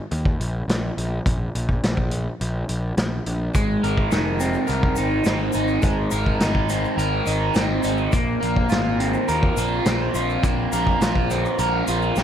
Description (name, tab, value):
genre	psychedelic rock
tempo	104 BPM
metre	4/4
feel	straight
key	unclear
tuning	A4 = 441 Hz
part	fuzz picked electric bass	bass	0.1-12.2 s	F1 to Eb2	-25 LUFS	equal	overdrive
part	vintage drum kit	drums	0.1-12.2 s	hi-hat, kick drum, snare drum	-24 LUFS	equal	none
part	crunchy overdriven guitar	riff	3.5-12.2 s	Ab3 to Bb4	-21 LUFS	right 1 dB	phaser
part	tube shaker	percussion	3.5-12.2 s	none	-39 LUFS	left 11 dB	none
room	light reverb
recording	none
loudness	-19 LUFS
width	side -9 dB against mid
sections	0.0-12.2 A section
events	none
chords	0.0 N.C.; 3.5 Abadd9; 8.1 Bbsus2